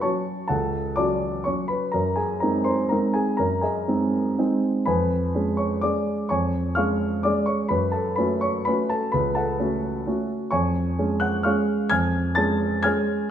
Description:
classical, piano waltz; 118-135 BPM; 3/4; rubato; A4 = 440 Hz
warm baby grand piano; solo; 0.0-13.3 s; C#2 to A6; -21 LUFS; equal
wet recital hall reverb, RT60 1.4 s; minimal, uncompressed stereo recording; -21 LUFS; side -9 dB against mid
0.0-13.3 A section
0.0 F#m; 1.9 G#7/F#; 4.9 C#7/E#; 7.7 F#m; 10.5 C#/E#
0.03 | 0.51 0.98 1.46 | 1.94 2.42 2.92 | 3.40 3.88 4.38 | 4.87 5.34 5.84 | 6.31 6.78 7.26 | 7.72 8.18 8.67 | 9.14 9.60 10.07 | 10.53 10.98 11.45 | 11.91 12.37 12.84

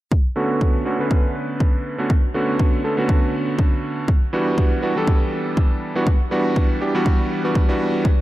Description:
nu-disco, nu disco; 121 BPM; 4/4; swing 56% on 16ths; B minor; A4 = 440 Hz
electronic kick drum; drums; 0.1-8.2 s; -17 LUFS; equal; overdrive
bright electric grand piano; accompaniment; 0.4-8.0 s; D3 to B4; -20 LUFS; right 1 dB; vintage 12-bit sampler grit, sidechain pumping, low-pass filter, tape echo
moderate lush hall reverb, RT60 1.9 s, digital ambience; dreamy mix soaked in reverb; -17 LUFS; side -16 dB against mid
0.1-8.2 A section
filter sweep on electric grand piano 0.1-8.2
0.1 Bm7; 4.1 Em7
| 0.12 0.61 1.11 1.60 | 2.10 2.60 3.09 3.59 | 4.08 4.58 5.08 5.57 | 6.07 6.56 7.06 7.55 | 8.05

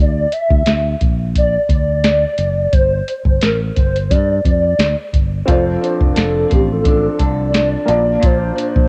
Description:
indie pop, bedroom pop; 87 BPM; 4/4; swing 55% on 16ths; F major; A4 = 441 Hz
hollow clarinet-like synth lead; melody; 0.0-8.9 s; G4 to E5; -20 LUFS; equal; ensemble chorus, cassette tape
fingered electric bass; bass; 0.0-8.9 s; F1 to G2; -21 LUFS; equal
soft vintage rhythm box; drums; 0.3-8.9 s; hi-hat, kick drum, snare drum; -18 LUFS; equal; vintage 12-bit sampler grit
electric guitar through a small old amp; accompaniment; 5.5-8.9 s; Bb2 to A4; -23 LUFS; equal; lush chorus, warbly pitch drift
warm upright piano; accompaniment; 5.5-8.9 s; Bb3 to A5; -25 LUFS; equal
little or no reverb; home recording on cassette; -15 LUFS; mono
0.0-8.9 A section
0.0 N.C.; 2.7 G5; 5.5 F6; 7.9 Bbmaj7
0.67 1.35 2.04 | 2.73 3.42 4.11 4.79 | 5.48 6.17 6.86 7.54 | 8.23

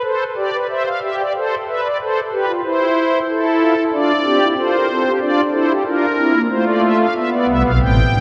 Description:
classical, baroque-style 4-part fugue for pipe organ; 92 BPM; 3/4; straight; F major; A4 = 440 Hz
pipe organ, strings celeste; solo; 0.0-8.2 s; G1 to G5; -17 LUFS; equal
wet church reverb, RT60 3.1 s; dark, warm production; -17 LUFS; mono
0.0-8.2 A section
0.0 C5; 0.7 C; 1.3 F/A; 2.6 C/E; 3.3 F; 5.2 Bb/D; 6.5 F/A; 7.2 C
0.04 0.69 | 1.33 1.98 2.62 | 3.27 3.92 4.57 | 5.21 5.86 6.52 | 7.17 7.82

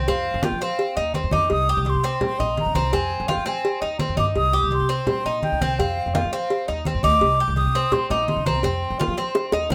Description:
latin, Cuban son and guajira; 168 BPM; 4/4; straight; A4 = 440 Hz
breathy concert flute; melody; 0.0-9.7 s; F5 to Eb6; -27 LUFS; equal
Cuban tres; arpeggios; 0.0-9.7 s; C4 to G4; -27 LUFS; equal
upright bass; bass; 0.0-9.7 s; Bb1 to F3; -28 LUFS; equal
congas; percussion; 0.1-9.7 s; -30 LUFS; equal
cowbell and bongos; percussion; 0.1-9.7 s; -29 LUFS; equal
moderate studio reverb, RT60 0.8 s; -22 LUFS; mono
0.0-9.7 A section
drum fill 9.4-9.7
0.1 F5; 1.5 Cm; 2.9 Fm7; 4.4 Cm; 5.8 F5; 7.2 Cm; 8.6 F5
| 0.07 0.43 0.79 1.15 | 1.50 1.86 2.21 2.57 | 2.93 3.29 3.64 4.00 | 4.36 4.71 5.07 5.43 | 5.78 6.14 6.50 6.85 | 7.21 7.57 7.92 8.28 | 8.64 8.99 9.35 9.71

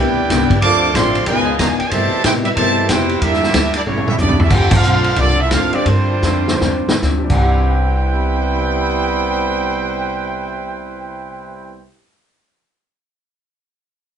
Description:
jazz, big band swing; 130-185 BPM; 4/4; swing 63% on 8ths; C major; A4 = 440 Hz
clear trumpet section; melody; 0.0-11.8 s; G3 to D6; -19 LUFS; right 2 dB
warm trombone section; second line; 0.0-11.8 s; B2 to G4; -22 LUFS; right 3 dB
archtop guitar, miked and amplified; accompaniment; 0.0-12.0 s; G2 to A4; -23 LUFS; left 4 dB
clear saxophone section; sustained chords; 0.0-4.5 s; B2 to E4; -26 LUFS; right 1 dB
upright bass; bass; 0.0-11.8 s; A1 to A2; -20 LUFS; equal
vintage drum kit; drums; 0.3-7.4 s; crash cymbal, hi-hat, kick drum, ride cymbal, snare drum, toms; -17 LUFS; equal
bright concert grand piano; accompaniment; 5.7-12.0 s; C3 to G4; -26 LUFS; equal
moderate studio ambience, RT60 0.5 s; band playing live in one room, nothing above 10.9 kHz; -13 LUFS; side -8 dB against mid
0.0-4.5 A section; 4.5-7.5 B section; 7.5-11.2 C section
drum fill 3.9-4.5, 6.2-7.0; slowing down 4.5-7.5; band accent 4.7
0.0 Cmaj9; 0.6 Dm7; 1.3 Db9; 1.9 Cmaj7; 3.2 Em7b5; 3.9 A7; 4.5 Dm7; 5.9 G7sus4; 7.2 Cmaj7
0.30 | 0.62 0.95 1.27 1.60 | 1.92 2.24 2.57 2.89 | 3.21 3.54 3.86 4.19 | 4.51 4.83 5.17 5.51 | 5.86 6.23 6.62 7.03 | 7.47 7.94 8.40 8.86 | 9.32 9.79 10.25 10.71

